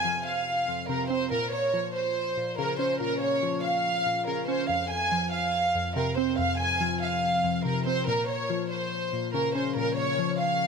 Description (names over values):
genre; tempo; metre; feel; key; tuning
hip hop; 142 BPM; 4/4; half-time; F minor; A4 = 440 Hz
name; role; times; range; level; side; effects
warm studio violin section; melody; 0.0-10.7 s; Bb4 to Ab5; -26 LUFS; right 1 dB; digital delay
glassy digital keys; accompaniment; 0.0-10.7 s; F2 to Db4; -30 LUFS; left 2 dB; chorus, phaser
room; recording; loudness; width
light reverb, small room ambience; none; -25 LUFS; side -5 dB against mid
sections
0.0-4.7 A section; 4.7-10.7 B section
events
none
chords
0.0 F5; 1.3 Bbm; 4.7 Fm; 8.1 Bbm